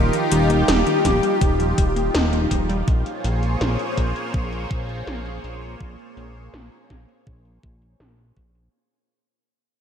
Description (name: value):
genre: synthwave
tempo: 82 BPM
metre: 4/4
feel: straight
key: unclear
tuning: A4 = 440 Hz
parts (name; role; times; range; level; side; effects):
- wide unison lead; melody; 0.0-2.7 s; G4 to Bb4; -24 LUFS; left 1 dB; tape echo
- lush unison pad; sustained chords; 0.0-8.7 s; Bb3 to Db5; -25 LUFS; equal; chorus, phaser, sidechain pumping
- wide unison pluck; arpeggios; 0.0-2.8 s; Eb3 to Eb4; -27 LUFS; left 1 dB; diffuse ambient delay
- fat analog bass; bass; 0.0-8.7 s; Eb1 to Bb1; -24 LUFS; equal; none
- 80s electronic pad drums; drums; 0.1-8.7 s; hi-hat, snare drum; -26 LUFS; equal; overdrive, low-pass filter on hats, low-pass filter on snare, low-pass filter on room
- electronic kick drum; drums; 1.0-8.5 s; none; -22 LUFS; equal; overdrive
room: moderate lush hall reverb, RT60 2.4 s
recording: dreamy mix soaked in reverb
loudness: -18 LUFS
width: side -8 dB against mid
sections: 0.0-8.7 A section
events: fade-out 0.0-8.7; filter sweep on drum 0.0-8.7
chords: 0.0 Ebadd9; 2.9 Bbm7